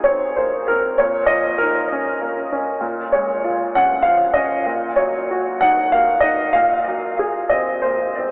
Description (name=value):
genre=neoclassical minimalist piano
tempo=97 BPM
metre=3/4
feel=rubato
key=unclear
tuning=A4 = 440 Hz
part: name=clear upright piano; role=solo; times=0.0-8.3 s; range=Bb2 to Gb5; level=-19 LUFS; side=equal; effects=analog delay
room=wet huge ambient reverb, RT60 3.8 s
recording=dreamy mix soaked in reverb, cassette tape, telephone sound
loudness=-19 LUFS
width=mono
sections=0.0-8.3 A section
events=none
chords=0.0 Ab7/Bb; 1.0 Dbadd9/Bb; 2.8 Bbm7; 4.7 Ebm7/Bb; 6.5 Ab7/Bb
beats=0.37 | 0.99 1.59 2.21 | 2.83 3.44 4.06 | 4.68 5.29 5.92 | 6.55 7.18 7.82